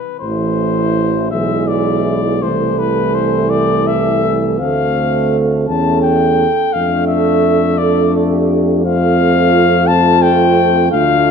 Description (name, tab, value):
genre	classical, hymn-like piece for brass band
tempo	56 BPM (dotted quarters)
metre	6/8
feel	uneven beats, rubato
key	A minor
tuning	A4 = 440 Hz
part	warm cornet	melody	0.0-11.3 s	B4 to A5	-17 LUFS	left 8 dB	none
part	warm French horn section	second line	0.2-11.3 s	E4 to A4	-18 LUFS	right 9 dB	none
part	clear trombone	accompaniment	0.2-11.3 s	E3 to A3	-21 LUFS	right 4 dB	none
part	warm euphonium	accompaniment	0.2-11.3 s	G#3 to D4	-20 LUFS	left 2 dB	none
part	warm tuba	bass	0.2-11.3 s	A1 to F2	-18 LUFS	equal	none
room	moderate scoring stage reverb, RT60 1.8 s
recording	dark, warm production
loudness	-11 LUFS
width	side -6 dB against mid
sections	0.2-11.3 A section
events	none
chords	0.2 Am; 1.3 E7/B; 2.4 Am/C; 4.6 Dm7; 5.7 A7/E; 6.7 Dm/F; 8.8 F